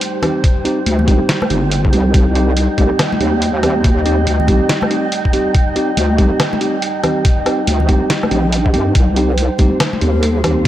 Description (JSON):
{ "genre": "deep dubstep", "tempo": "141 BPM", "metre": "4/4", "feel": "swing 62% on 16ths, half-time", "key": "C minor", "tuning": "A4 = 436 Hz", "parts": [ { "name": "dark analog pad", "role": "sustained chords", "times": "0.0-10.7 s", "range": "G3 to Eb5", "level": "-23 LUFS", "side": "left 1 dB", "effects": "chorus" }, { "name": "trip hop sampler-style drum kit", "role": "drums", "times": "0.0-10.7 s", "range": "hi-hat, snare drum, woodblock", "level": "-20 LUFS", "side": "equal", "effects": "none" }, { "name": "wind-like tuned noise texture", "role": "texture", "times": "0.0-10.7 s", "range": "G4 to C5", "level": "-24 LUFS", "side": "right 6 dB", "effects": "built-in reverb" }, { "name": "mellow tine electric piano", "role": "stabs", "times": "0.2-10.6 s", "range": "C4 to G4", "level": "-20 LUFS", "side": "right 2 dB", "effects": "dub echo" }, { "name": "congas", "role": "percussion", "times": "0.2-10.5 s", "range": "none", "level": "-24 LUFS", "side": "left 3 dB", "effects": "dub echo" }, { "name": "electronic kick drum", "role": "drums", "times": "0.4-10.7 s", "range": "none", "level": "-14 LUFS", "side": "equal", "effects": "none" }, { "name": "wobble bass", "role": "bass", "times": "0.9-10.7 s", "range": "G1 to G2", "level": "-15 LUFS", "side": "equal", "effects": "chorus" }, { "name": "breathy mellow low ney", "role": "melody", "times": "9.3-10.4 s", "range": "Bb4 to C5", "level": "-25 LUFS", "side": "right 2 dB", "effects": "dub echo" } ], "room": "light reverb", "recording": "dry, gritty hardware recording", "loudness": "-12 LUFS", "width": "side -13 dB against mid", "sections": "0.0-10.7 A section", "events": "none", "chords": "0.0 Cm" }